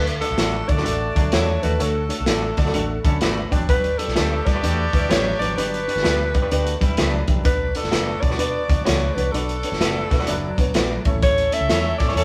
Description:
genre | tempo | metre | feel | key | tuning
uptempo 1960s-style soul | 127 BPM | 4/4 | swing 64% on 8ths | D major | A4 = 443 Hz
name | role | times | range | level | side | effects
warm alto saxophone | melody | 0.0-12.2 s | A4 to E5 | -27 LUFS | equal | none
bright horn section | second line | 0.0-12.2 s | A3 to A4 | -36 LUFS | equal | none
warm studio string section | second line | 0.0-12.2 s | A4 to D6 | -39 LUFS | equal | none
warm baby grand piano | accompaniment | 0.0-12.2 s | A3 to G5 | -31 LUFS | equal | none
vintage muted fingered electric bass | bass | 0.0-12.2 s | F#1 to D3 | -28 LUFS | equal | none
crunchy breakbeat drum kit | drums | 0.1-12.2 s | hi-hat, kick drum, snare drum | -24 LUFS | equal | none
electric guitar through a small old amp | stabs | 0.4-12.2 s | E4 to D5 | -33 LUFS | equal | none
congas | percussion | 0.4-12.2 s | none | -38 LUFS | equal | none
clean electric guitar | riff | 1.2-12.2 s | F#3 to A4 | -33 LUFS | equal | tremolo
room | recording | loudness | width
moderate stone room reverb, RT60 1.0 s | band playing live in one room | -20 LUFS | mono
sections
0.0-12.2 A section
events
none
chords
0.0 D; 3.5 G; 7.5 Bm; 11.0 A

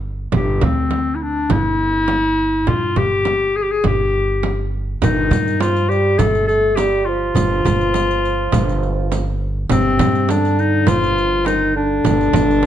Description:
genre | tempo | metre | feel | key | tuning
Turkish makam ensemble | 102 BPM | 4/4 | straight | G makam hicaz, G makam ussak from 5.0 s | A4 = 439 Hz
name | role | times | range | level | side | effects
upright bass | bass | 0.0-12.7 s | G1 to G2 | -21 LUFS | right 1 dB | none
breathy clarinet | melody | 0.3-12.7 s | C4 to A4-28c | -18 LUFS | left 3 dB | none
darbuka | percussion | 0.3-12.7 s | none | -24 LUFS | left 2 dB | none
frame drum | percussion | 0.3-12.7 s | none | -23 LUFS | right 6 dB | none
dark bassoon | second line | 5.0-12.7 s | C3 to A3-28c | -23 LUFS | right 6 dB | none
riq | percussion | 5.0-12.6 s | none | -31 LUFS | left 4 dB | none
room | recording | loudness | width
moderate recital hall reverb, RT60 1.3 s | nothing above 10.8 kHz | -15 LUFS | side -10 dB against mid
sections
0.0-5.0 A section; 5.0-12.7 B section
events
none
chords
none

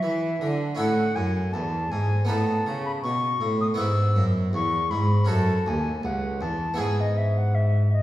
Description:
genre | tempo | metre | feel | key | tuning
classical, baroque-style sonata movement with continuo | 80 BPM | 4/4 | straight | E major | A4 = 439 Hz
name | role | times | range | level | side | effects
silver concert flute | melody | 0.0-8.0 s | D#5 to E6 | -28 LUFS | left 2 dB | none
harpsichord | accompaniment | 0.0-8.0 s | C#2 to B4 | -29 LUFS | equal | none
rich cello | bass | 0.0-8.0 s | C#2 to E3 | -24 LUFS | equal | none
room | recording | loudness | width
wet recital hall reverb, RT60 1.5 s | heard from further back in the room | -22 LUFS | side -14 dB against mid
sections
0.0-8.0 A section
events
none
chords
0.0 A; 2.3 B7/A; 3.8 E; 5.3 F#m; 6.8 E/G#

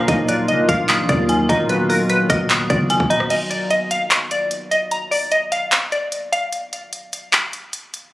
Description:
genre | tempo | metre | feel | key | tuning
hip hop, trap | 149 BPM | 4/4 | half-time | unclear | A4 = 440 Hz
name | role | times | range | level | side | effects
glassy wavetable pluck | melody | 0.0-6.5 s | Bb4 to Bb5 | -20 LUFS | equal | chorus, low-pass filter, ping-pong delay
dark detuned synth bell | second line | 0.0-3.3 s | Ab5 to Gb6 | -23 LUFS | equal | chorus, ping-pong delay
warbly lo-fi synth keys | accompaniment | 0.0-3.3 s | D#3 to F#4 | -25 LUFS | equal | chorus, low-pass filter
deep dark ambient pad | sustained chords | 0.0-3.3 s | Eb3 to F#4 | -24 LUFS | equal | chorus, built-in reverb
hard-hitting 808-style bass | bass | 0.0-3.3 s | Eb1 to Eb2 | -24 LUFS | equal | none
trap drum kit | drums | 0.1-8.0 s | crash cymbal, handclaps, hi-hat, kick drum, rim click | -20 LUFS | equal | none
room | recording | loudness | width
light reverb, digital ambience | recorded on a phone in the room, club reverb, compression | -16 LUFS | side -17 dB against mid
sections
0.0-3.3 A section; 3.3-8.1 B section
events
break 3.3-8.1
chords
0.1 Ebmadd9; 1.7 B/D#; 3.3 N.C.

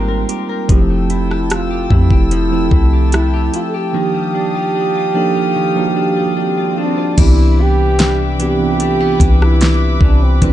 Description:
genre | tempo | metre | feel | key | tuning
contemporary R&B | 74 BPM | 4/4 | straight | C major | A4 = 440 Hz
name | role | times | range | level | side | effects
warm French horn | melody | 0.0-10.5 s | C4 to A4 | -19 LUFS | right 1 dB | ping-pong delay
mellow tine electric piano | accompaniment | 0.0-10.5 s | E3 to B4 | -18 LUFS | right 4 dB | slow stereo tremolo
warm chamber string section | sustained chords | 0.0-10.5 s | A4 to E6 | -26 LUFS | left 2 dB | none
direct-recorded clean electric guitar | arpeggios | 0.0-10.5 s | C3 to Bb4 | -26 LUFS | left 10 dB | lush chorus
soft 808-style bass | bass | 0.0-10.5 s | E1 to F2 | -14 LUFS | equal | none
smooth R&B drum kit | drums | 0.3-10.5 s | crash cymbal, hi-hat, kick drum, rim click, snare drum | -14 LUFS | equal | none
swell | sound effects | 6.3-7.2 s | none | -27 LUFS | left 3 dB | none
room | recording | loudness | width
little or no reverb | dark, warm production, nothing above 10.5 kHz | -12 LUFS | side -13 dB against mid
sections
0.0-7.2 A section; 7.2-10.5 B section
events
break 3.9-7.2; swell 6.3-7.2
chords
0.0 Abmaj9; 0.7 Fmaj9; 3.9 Ebmaj9; 7.2 Cmaj9

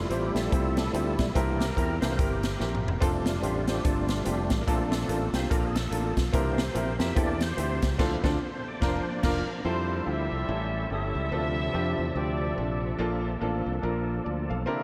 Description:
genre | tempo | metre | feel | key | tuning
uptempo gospel | 144 BPM | 4/4 | swing 60% on 8ths | F major | A4 = 440 Hz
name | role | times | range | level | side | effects
bright tonewheel organ | sustained chords | 0.0-14.8 s | C3 to E5 | -35 LUFS | equal | fast rotary speaker, chorus vibrato
fingered electric bass | bass | 0.0-14.6 s | E1 to F2 | -34 LUFS | equal | none
clear upright piano | accompaniment | 0.1-14.8 s | A2 to F5 | -34 LUFS | equal | none
swinging big-band drum kit | drums | 0.1-9.4 s | crash cymbal, hi-hat, kick drum, snare drum, toms | -32 LUFS | equal | none
clear horn section | melody | 9.6-13.0 s | C4 to E5 | -40 LUFS | equal | analog delay
warm trumpet | melody | 9.7-12.8 s | C5 to E5 | -40 LUFS | equal | analog delay
room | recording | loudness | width
moderate huge ambient reverb, RT60 7.9 s | dreamy mix soaked in reverb | -28 LUFS | mono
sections
0.0-9.7 A section; 9.7-14.8 B section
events
tonewheel organ solo 0.0-9.7; drum fill 2.6-3.0; band accent 8.0-9.7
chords
0.0 Fmaj7; 1.4 C7; 3.0 F6; 4.7 Bbmaj7; 6.3 C7; 8.0 Dm7; 8.8 Bb/F; 9.7 Fmaj9; 10.5 A7; 11.3 Dm7; 13.0 Bbmaj7

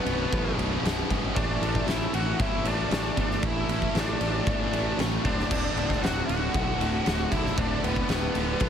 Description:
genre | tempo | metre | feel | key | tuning
quiet-loud alternative rock | 116 BPM | 4/4 | straight | unclear | A4 = 441 Hz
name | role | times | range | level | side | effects
octave-fuzz lead guitar | melody | 0.0-8.7 s | B3 to F#4 | -31 LUFS | equal | distortion, plate reverb, analog delay
distorted electric guitar | riff | 0.0-8.7 s | B1 to A4 | -36 LUFS | equal | none
high-gain distorted guitar | riff | 0.0-8.7 s | B1 to A3 | -33 LUFS | right 11 dB | distortion
tight distorted guitar | riff | 0.0-8.7 s | B1 to A3 | -33 LUFS | left 12 dB | distortion
modern bright fingered electric bass | bass | 0.1-8.7 s | B0 to B1 | -31 LUFS | equal | none
oversized low-tuned drum kit | drums | 0.1-8.7 s | crash cymbal, kick drum, ride cymbal, snare drum | -29 LUFS | equal | none
room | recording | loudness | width
light reverb | heavily compressed radio sound, multiband compression | -24 LUFS | side -8 dB against mid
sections
0.0-8.7 A section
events
none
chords
0.0 Bm7; 1.4 Asus4; 5.3 Dadd9

